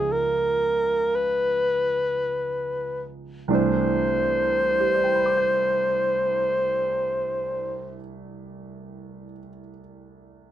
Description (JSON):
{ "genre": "jazz ballad", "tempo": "46-60 BPM", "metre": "4/4", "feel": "swing 67% on 8ths", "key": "C major", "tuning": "A4 = 439 Hz", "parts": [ { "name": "mellow alto saxophone", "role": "melody", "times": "0.0-8.0 s", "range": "Ab4 to C5", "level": "-22 LUFS", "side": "equal", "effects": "none" }, { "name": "warm concert grand piano", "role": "accompaniment", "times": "0.0-10.5 s", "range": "C2 to G6", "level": "-29 LUFS", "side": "right 4 dB", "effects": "none" } ], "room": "light reverb", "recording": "close, detailed microphones", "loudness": "-21 LUFS", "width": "side -11 dB against mid", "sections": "0.0-3.5 A section; 3.5-8.7 B section", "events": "slowing down 0.0-3.5", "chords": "0.0 Db7; 3.5 C69" }